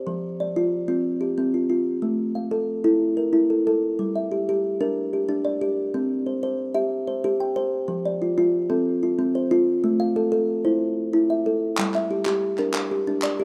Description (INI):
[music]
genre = southern african traditional, mbira-style interlocking cycle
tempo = 123 BPM (dotted quarters)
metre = 12/8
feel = straight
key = G dorian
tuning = A4 = 441 Hz
[part]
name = kalimba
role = arpeggios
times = 0.0-13.4 s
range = F3 to G5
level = -23 LUFS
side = equal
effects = none
[part]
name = group handclap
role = percussion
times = 11.8-13.4 s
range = none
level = -32 LUFS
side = equal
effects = none
[sound]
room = light reverb, small room ambience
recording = rough home demo mix, faint mains hum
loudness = -23 LUFS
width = mono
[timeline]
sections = 0.0-4.0 A section; 4.0-13.4 A section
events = none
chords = 0.1 F5; 2.0 A5; 4.0 Gm; 5.9 C; 7.9 F; 9.8 Am; 11.8 Gm